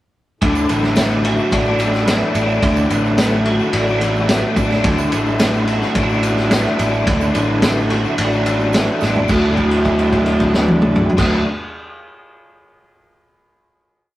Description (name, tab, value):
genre	psychedelic rock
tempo	108 BPM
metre	4/4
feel	straight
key	D mixolydian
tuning	A4 = 438 Hz
part	overdriven combo organ	sustained chords	0.4-11.4 s	E4 to D6	-28 LUFS	right 3 dB	none
part	overdriven electric guitar	riff	0.4-11.4 s	D3 to F#4	-18 LUFS	left 1 dB	rotary speaker
part	fuzz picked electric bass	bass	0.4-11.4 s	A1 to D2	-20 LUFS	right 1 dB	overdrive
part	hand-pumped harmonium	drone	0.4-11.4 s	D2 to A2	-28 LUFS	left 1 dB	none
part	vintage drum kit	drums	0.4-11.3 s	crash cymbal, kick drum, ride cymbal, snare drum, toms	-19 LUFS	equal	none
part	tambourine	percussion	0.6-9.5 s	none	-40 LUFS	left 5 dB	none
room	moderate stone room reverb, RT60 1.0 s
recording	rough rehearsal-room recording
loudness	-14 LUFS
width	side -15 dB against mid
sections	0.4-9.3 groove; 9.3-11.5 final chord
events	drum fill 9.0; held note 9.3-11.2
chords	0.4 Dadd9